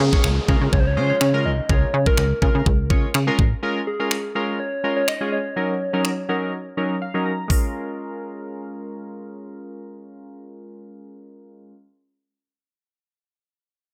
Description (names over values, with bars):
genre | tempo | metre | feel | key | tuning
dance-pop | 124 BPM | 4/4 | straight | Db major | A4 = 440 Hz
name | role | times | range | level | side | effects
soft struck synth lead | melody | 0.0-7.0 s | Ab4 to Eb5 | -28 LUFS | equal | chorus, low-pass filter, tape echo
plucky analog bass | bass | 0.0-3.5 s | A1 to Db3 | -23 LUFS | equal | sidechain pumping
downlifter | sound effects | 0.0-3.6 s | none | -35 LUFS | equal | none
warm analog keys | accompaniment | 0.1-11.8 s | Gb3 to Bb5 | -28 LUFS | equal | chorus, sidechain pumping, low-pass filter
pop drum kit | drums | 0.1-7.6 s | finger snaps, hi-hat, kick drum | -22 LUFS | equal | none
room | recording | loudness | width
light reverb, digital ambience | none | -21 LUFS | mono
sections
0.0-7.5 A section; 7.5-11.4 B section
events
filter sweep 0.0-7.5; silent gap 6.5-7.5; synth keys fill 6.8-7.5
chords
0.0 Db6; 3.6 Bbm7; 5.6 Ebm7; 7.5 Db6